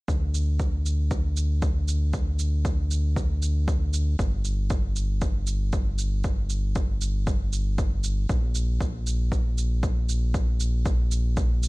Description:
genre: piano and strings electronica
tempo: 117 BPM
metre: 4/4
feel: straight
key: unclear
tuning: A4 = 440 Hz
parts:
  - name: round analog bass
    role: bass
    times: 0.1-11.7 s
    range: G1 to D2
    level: -24 LUFS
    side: equal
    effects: sidechain pumping
  - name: electronic kick drum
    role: drums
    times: 0.1-11.5 s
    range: none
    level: -26 LUFS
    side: equal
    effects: studio reverb
  - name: shaker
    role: drums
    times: 0.1-11.7 s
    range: none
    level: -39 LUFS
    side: right 5 dB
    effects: studio reverb
room: little or no reverb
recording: none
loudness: -23 LUFS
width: side -24 dB against mid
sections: 0.1-11.7 A section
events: none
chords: none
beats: | 0.09 0.60 1.11 1.63 | 2.14 2.65 3.16 3.68 | 4.19 4.70 5.22 5.73 | 6.24 6.75 7.27 7.78 | 8.29 8.81 9.32 9.83 | 10.34 10.86 11.37

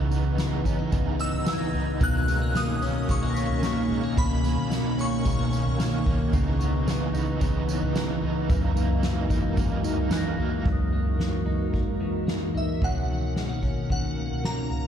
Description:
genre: dream pop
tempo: 111 BPM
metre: 4/4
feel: straight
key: B major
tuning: A4 = 439 Hz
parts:
  - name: crunchy overdriven guitar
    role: accompaniment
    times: 0.0-10.7 s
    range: F#2 to D#4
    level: -34 LUFS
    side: right 5 dB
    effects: tremolo, ensemble chorus
  - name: ethereal airy pad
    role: sustained chords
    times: 0.0-14.9 s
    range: B2 to B4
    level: -30 LUFS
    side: right 1 dB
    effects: ensemble chorus, built-in reverb
  - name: clean electric guitar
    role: arpeggios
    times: 0.0-14.9 s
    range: F#2 to D#4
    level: -29 LUFS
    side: left 2 dB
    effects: lush chorus, ping-pong delay
  - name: glockenspiel with rubber mallets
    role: texture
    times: 0.0-12.4 s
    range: C#6 to B6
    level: -44 LUFS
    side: left 2 dB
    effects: ping-pong delay
  - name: soft-mallet drum kit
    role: drums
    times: 0.1-14.8 s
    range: crash cymbal, kick drum, snare drum, tambourine, toms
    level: -26 LUFS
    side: equal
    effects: none
  - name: shimmering bell with halo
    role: melody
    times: 1.2-6.0, 12.6-14.9 s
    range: E5 to F#6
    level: -33 LUFS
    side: left 1 dB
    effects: ensemble chorus, phaser, ping-pong delay
room: light reverb, small room ambience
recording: dark, warm production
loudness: -23 LUFS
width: side -9 dB against mid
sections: 0.0-10.7 A section; 10.7-12.8 B section; 12.8-14.9 C section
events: none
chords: 0.0 C#m9; 2.0 Bmaj9; 6.3 C#m9; 8.5 F#13; 12.8 Bmaj9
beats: 0.39 0.93 1.47 | 2.01 2.55 3.09 3.63 | 4.17 4.71 5.25 5.79 | 6.33 6.87 7.41 7.95 | 8.49 9.03 9.57 10.12 | 10.65 11.20 11.74 12.28 | 12.82 13.36 13.90 14.44

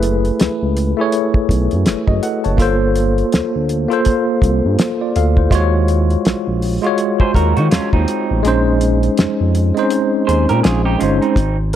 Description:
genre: R&B, neo-soul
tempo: 82 BPM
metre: 4/4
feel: swing 60% on 16ths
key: unclear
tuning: A4 = 441 Hz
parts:
  - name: tine electric piano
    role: accompaniment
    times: 0.0-11.4 s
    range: G#3 to A5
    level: -17 LUFS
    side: equal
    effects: medium stereo tremolo
  - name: smooth gliding synth bass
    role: bass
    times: 0.0-11.8 s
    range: F#1 to D#3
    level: -16 LUFS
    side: equal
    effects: none
  - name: cloth-damped thuddy drum kit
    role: drums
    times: 0.0-11.8 s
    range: hi-hat, kick drum, snare drum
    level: -17 LUFS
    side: equal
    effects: none
  - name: electric guitar through a small old amp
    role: second line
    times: 7.2-11.6 s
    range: B#3 to B#4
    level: -20 LUFS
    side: right 4 dB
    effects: none
room: small room ambience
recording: none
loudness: -13 LUFS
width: side -11 dB against mid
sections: 0.0-11.4 A section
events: kick muted 8.4-11.4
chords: 0.0 F#m11; 2.6 Gm11; 5.5 D#m11; 8.4 A#m11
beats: 0.39 1.12 1.85 | 2.58 3.31 4.04 4.78 | 5.51 6.24 6.97 7.70 | 8.43 9.17 9.90 10.63 | 11.36

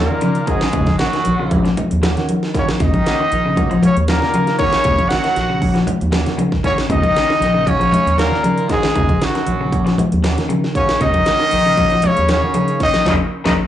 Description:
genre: afrobeat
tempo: 117 BPM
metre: 4/4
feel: straight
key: Eb minor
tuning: A4 = 440 Hz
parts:
  - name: clear trumpet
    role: melody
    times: 0.0-13.5 s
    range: Gb4 to Gb5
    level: -18 LUFS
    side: left 1 dB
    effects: slapback echo
  - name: brilliant trombone section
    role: second line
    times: 0.0-13.5 s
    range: Gb2 to Gb3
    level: -27 LUFS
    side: left 2 dB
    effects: slapback echo
  - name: growling tenor saxophone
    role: second line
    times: 0.0-13.5 s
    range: Gb3 to Gb4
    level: -26 LUFS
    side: right 5 dB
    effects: slapback echo
  - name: electric guitar at the edge of break-up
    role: arpeggios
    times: 0.0-13.5 s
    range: Db3 to Gb3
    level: -23 LUFS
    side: left 5 dB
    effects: spring reverb, slapback echo
  - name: mellow electric guitar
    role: stabs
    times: 0.0-13.5 s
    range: Bb3 to Gb4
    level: -28 LUFS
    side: right 6 dB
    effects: warbly pitch drift, slapback echo
  - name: fingered electric bass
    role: bass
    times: 0.0-13.5 s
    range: Bb1 to Eb3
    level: -21 LUFS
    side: right 1 dB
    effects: none
  - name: house drum kit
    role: drums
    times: 0.2-13.6 s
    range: hi-hat, kick drum, snare drum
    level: -21 LUFS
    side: right 1 dB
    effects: none
  - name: congas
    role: percussion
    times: 0.2-13.6 s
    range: none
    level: -21 LUFS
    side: equal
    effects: none
room: light reverb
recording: live gig heard through the venue's PA, club reverb, nothing above 10.7 kHz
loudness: -14 LUFS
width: side -11 dB against mid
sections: 0.0-13.7 A section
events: band accent 13.1-13.7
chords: 0.0 Ebm7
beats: 0.22 | 0.73 1.25 1.76 2.27 | 2.79 3.30 3.82 4.33 | 4.84 5.36 5.87 6.38 | 6.90 7.41 7.92 8.44 | 8.95 9.46 9.98 10.49 | 11.01 11.52 12.03 12.55 | 13.06

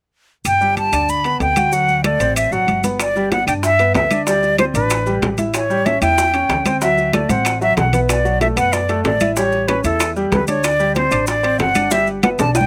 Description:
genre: latin, salsa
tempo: 188 BPM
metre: 4/4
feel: straight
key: G major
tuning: A4 = 440 Hz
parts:
  - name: upright bass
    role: bass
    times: 0.4-12.7 s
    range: G1 to G2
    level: -25 LUFS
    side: equal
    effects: none
  - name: bright silver concert flute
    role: melody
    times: 0.5-12.7 s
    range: A4 to B5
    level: -19 LUFS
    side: equal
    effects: none
  - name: claves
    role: percussion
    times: 0.5-12.7 s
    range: none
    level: -33 LUFS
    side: equal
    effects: none
  - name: congas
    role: percussion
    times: 0.5-12.7 s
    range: none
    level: -26 LUFS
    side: equal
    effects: none
  - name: maracas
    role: percussion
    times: 0.5-12.7 s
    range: none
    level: -33 LUFS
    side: equal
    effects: none
  - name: timbales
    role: percussion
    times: 0.5-12.6 s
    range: none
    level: -27 LUFS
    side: equal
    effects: none
  - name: clear grand piano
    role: accompaniment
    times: 0.6-12.7 s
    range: F#3 to F#5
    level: -24 LUFS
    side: equal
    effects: none
  - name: bongos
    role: percussion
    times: 3.0-12.5 s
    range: none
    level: -26 LUFS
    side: equal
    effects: slapback echo
room: little or no reverb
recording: recorded outdoors, with no room sound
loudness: -17 LUFS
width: mono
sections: 0.5-3.0 A section; 3.0-12.7 B section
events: drum fill 7.3-8.1, 11.9-12.7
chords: 0.5 G; 1.7 D7; 3.0 G6; 4.3 D7sus4; 5.5 A7; 6.8 D7; 8.1 Bm7; 9.4 A7; 10.6 D7sus4; 11.9 G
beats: | 0.45 0.77 1.09 1.41 | 1.73 2.04 2.36 2.68 | 3.00 3.31 3.63 3.95 | 4.27 4.59 4.91 5.22 | 5.54 5.86 6.18 6.50 | 6.82 7.14 7.46 7.77 | 8.09 8.41 8.73 9.05 | 9.37 9.69 10.01 10.32 | 10.64 10.96 11.28 11.60 | 11.91 12.23 12.55

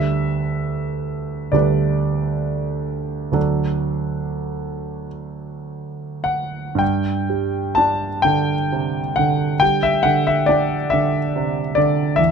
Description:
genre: classical, romantic nocturne for solo piano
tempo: 32-48 BPM (dotted quarters)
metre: 12/8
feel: rubato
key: G major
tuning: A4 = 440 Hz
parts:
  - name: warm concert grand piano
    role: solo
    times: 0.0-12.3 s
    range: D2 to A5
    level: -18 LUFS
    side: right 1 dB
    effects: none
room: light reverb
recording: close, detailed microphones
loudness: -18 LUFS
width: side -6 dB against mid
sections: 0.0-6.8 A section; 6.8-12.3 B section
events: none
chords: 0.0 G/D; 3.4 D; 6.8 G5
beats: 1.56 3.35 5.10 | 6.81 8.26 9.62 10.92 | 12.19

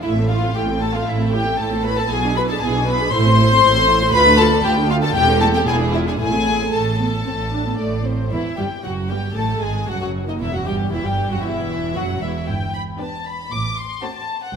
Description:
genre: quick classical-period movement for string orchestra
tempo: 116 BPM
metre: 4/4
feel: straight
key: A minor, E minor from 8.3 s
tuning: A4 = 442 Hz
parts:
  - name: warm symphonic violin section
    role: melody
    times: 0.0-14.5 s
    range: C5 to D6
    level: -21 LUFS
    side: left 4 dB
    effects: none
  - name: warm symphonic violin section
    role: second line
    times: 0.0-14.4 s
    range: D#4 to C5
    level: -24 LUFS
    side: left 1 dB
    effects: none
  - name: dark symphonic viola section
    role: accompaniment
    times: 0.0-14.4 s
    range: D#3 to A4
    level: -24 LUFS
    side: right 2 dB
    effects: none
  - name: rich studio double bass section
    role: bass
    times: 0.0-13.9 s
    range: E1 to D2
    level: -24 LUFS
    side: right 2 dB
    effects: none
  - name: rich symphonic cello section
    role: bass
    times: 0.0-13.9 s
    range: D2 to B2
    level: -24 LUFS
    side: right 2 dB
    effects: none
room: wet scoring stage reverb, RT60 1.6 s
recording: none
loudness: -16 LUFS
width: side -6 dB against mid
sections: 0.0-8.3 A section; 8.3-14.6 B section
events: none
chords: 0.0 Am; 2.1 E7/B; 3.1 Am; 4.1 Dm; 5.2 Am/E; 5.7 E7b9; 6.2 Am; 8.3 Em; 9.4 D#dim; 10.4 Em; 12.5 G; 13.5 F#dim/A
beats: | 0.03 0.55 1.07 1.59 | 2.11 2.62 3.12 3.63 | 4.14 4.65 5.15 5.67 | 6.20 6.74 7.27 7.79 | 8.32 8.84 9.36 9.88 | 10.41 10.93 11.45 11.96 | 12.48 13.00 13.52 14.03 | 14.54

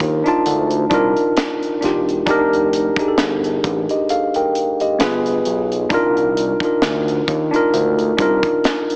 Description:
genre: R&B, neo-soul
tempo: 66 BPM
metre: 4/4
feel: swing 56% on 16ths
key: C dorian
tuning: A4 = 441 Hz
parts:
  - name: warm baby grand piano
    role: melody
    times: 0.0-1.8 s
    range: none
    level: barely audible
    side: none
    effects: none
  - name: mellow tine electric piano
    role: accompaniment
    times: 0.0-9.0 s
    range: B3 to A5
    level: -16 LUFS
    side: equal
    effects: medium stereo tremolo
  - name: smooth synth bass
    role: bass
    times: 0.0-8.4 s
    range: E1 to Eb2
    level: -22 LUFS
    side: equal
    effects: none
  - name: tight funk drum kit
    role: drums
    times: 0.0-9.0 s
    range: hi-hat, kick drum, snare drum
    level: -22 LUFS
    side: equal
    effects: none
room: light reverb, small room ambience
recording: heavily compressed radio sound, small speaker sound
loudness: -15 LUFS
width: side -35 dB against mid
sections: 0.0-9.0 A section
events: none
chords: 0.0 Cm9; 2.3 F9sus4; 5.0 G7b9; 5.9 Cm9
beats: 0.45 1.36 | 2.27 3.18 4.08 4.99 | 5.90 6.81 7.72 8.63

